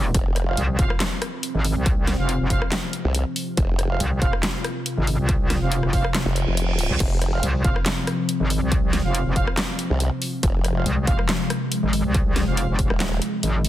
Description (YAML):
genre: heavy wobble dubstep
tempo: 140 BPM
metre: 4/4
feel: swing 53% on 16ths, half-time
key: F minor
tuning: A4 = 441 Hz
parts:
  - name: evolving wavetable pad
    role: sustained chords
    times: 0.0-13.7 s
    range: C3 to F4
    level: -28 LUFS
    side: left 1 dB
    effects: phaser, built-in reverb, sidechain pumping
  - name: metallic wobble bass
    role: bass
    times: 0.0-13.7 s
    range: F1 to C2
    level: -22 LUFS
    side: equal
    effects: chorus, overdrive
  - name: formant-sweep wobble bass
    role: bass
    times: 0.1-13.2 s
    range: Eb1 to C2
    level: -23 LUFS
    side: equal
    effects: chorus, overdrive
  - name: dubstep drum kit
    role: drums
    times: 0.1-13.7 s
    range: crash cymbal, handclaps, hi-hat, rim click, snare drum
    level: -27 LUFS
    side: equal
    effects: soft clipping on snare
  - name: electronic kick drum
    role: drums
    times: 0.1-12.9 s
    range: none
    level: -23 LUFS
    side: equal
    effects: distortion
  - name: mellow brass ensemble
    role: stabs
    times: 0.5-12.7 s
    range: F4 to F5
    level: -32 LUFS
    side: right 4 dB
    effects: tape echo
  - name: reverse cymbal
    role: sound effects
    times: 6.3-7.0 s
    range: none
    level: -31 LUFS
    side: right 5 dB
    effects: none
room: light reverb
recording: dense, heavily limited modern master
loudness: -20 LUFS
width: side -13 dB against mid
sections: 0.0-13.7 A section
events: reverse cymbal 6.3-7.0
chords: 0.0 F5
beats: | 0.14 0.57 1.00 1.43 | 1.86 2.29 2.72 3.15 | 3.57 4.00 4.43 4.86 | 5.29 5.72 6.14 6.57 | 7.00 7.43 7.86 8.29 | 8.72 9.14 9.57 10.00 | 10.43 10.86 11.29 11.72 | 12.14 12.57 13.00 13.43